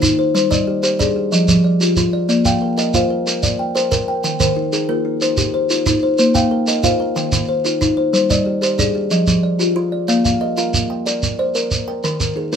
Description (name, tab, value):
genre	southern african traditional, mbira-style interlocking cycle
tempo	123 BPM (dotted quarters)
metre	12/8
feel	straight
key	Bb mixolydian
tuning	A4 = 441 Hz
part	kalimba	arpeggios	0.0-12.6 s	Eb3 to G5	-18 LUFS	left 2 dB	none
part	kalimba	arpeggios	0.0-12.6 s	Eb3 to G5	-19 LUFS	right 1 dB	none
part	shekere	percussion	0.0-12.6 s	none	-20 LUFS	right 3 dB	none
room	moderate studio reverb, RT60 0.5 s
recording	minimal, uncompressed stereo recording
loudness	-15 LUFS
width	side -7 dB against mid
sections	0.0-10.1 A section; 10.1-12.6 B section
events	none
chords	0.4 G5; 1.3 Fm; 2.3 Bb; 4.2 Eb; 6.2 Bb5; 7.2 Eb; 8.1 G5; 9.1 Fm; 10.1 Bb; 12.0 Eb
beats	| 0.35 0.84 1.33 1.81 | 2.30 2.78 3.27 3.76 | 4.24 4.73 5.21 5.70 | 6.19 6.67 7.16 7.65 | 8.14 8.62 9.11 9.60 | 10.09 10.57 11.06 11.55 | 12.04 12.53